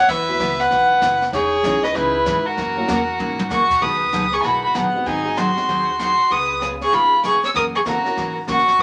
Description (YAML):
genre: country, western swing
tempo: 193 BPM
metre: 4/4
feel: swing 64% on 8ths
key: B major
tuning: A4 = 440 Hz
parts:
  - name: dark fiddle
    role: melody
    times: 0.0-8.8 s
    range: A#4 to E6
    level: -20 LUFS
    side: equal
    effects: none
  - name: dark fiddle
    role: second line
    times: 0.0-8.8 s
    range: B3 to C#5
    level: -26 LUFS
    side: equal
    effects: none
  - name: upright bass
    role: bass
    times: 0.0-8.8 s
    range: E1 to G#2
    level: -37 LUFS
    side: equal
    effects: none
  - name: picked steel-string acoustic guitar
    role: accompaniment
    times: 0.1-8.8 s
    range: B2 to G#4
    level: -29 LUFS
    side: equal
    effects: none
  - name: jazz brush drum kit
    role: drums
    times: 0.1-8.8 s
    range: brushed snare drum, crash cymbal, hi-hat, kick drum, snare drum, toms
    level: -34 LUFS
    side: equal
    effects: none
  - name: honky-tonk upright piano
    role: accompaniment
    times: 0.3-8.3 s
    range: F#3 to B4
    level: -33 LUFS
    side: equal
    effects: none
room: wet studio reverb, RT60 0.6 s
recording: none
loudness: -19 LUFS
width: mono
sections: 0.0-3.8 A section; 3.8-8.8 B section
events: drum fill 3.2-3.5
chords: 0.1 Esus2; 1.3 C#madd9/E; 2.6 F#7; 3.8 B6; 5.1 G#7; 6.3 C#7; 7.5 F#7